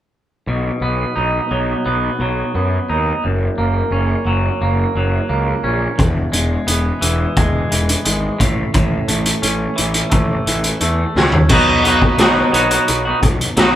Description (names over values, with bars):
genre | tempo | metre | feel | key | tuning
quiet-loud alternative rock | 87 BPM | 4/4 | straight | B mixolydian | A4 = 440 Hz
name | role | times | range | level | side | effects
twangy electric guitar | arpeggios | 0.5-13.8 s | E2 to F#4 | -18 LUFS | right 1 dB | none
fuzz picked electric bass | bass | 0.5-13.8 s | E1 to F#2 | -19 LUFS | equal | overdrive
raw garage drum kit | drums | 6.0-13.7 s | crash cymbal, hi-hat, kick drum, snare drum, toms | -15 LUFS | equal | none
room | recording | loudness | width
light reverb | band playing live in one room | -14 LUFS | side -12 dB against mid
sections
0.5-11.5 A section; 11.5-13.8 B section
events
drum fill 11.2-11.5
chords
0.5 B; 3.2 F#; 6.0 E; 8.4 A; 11.5 B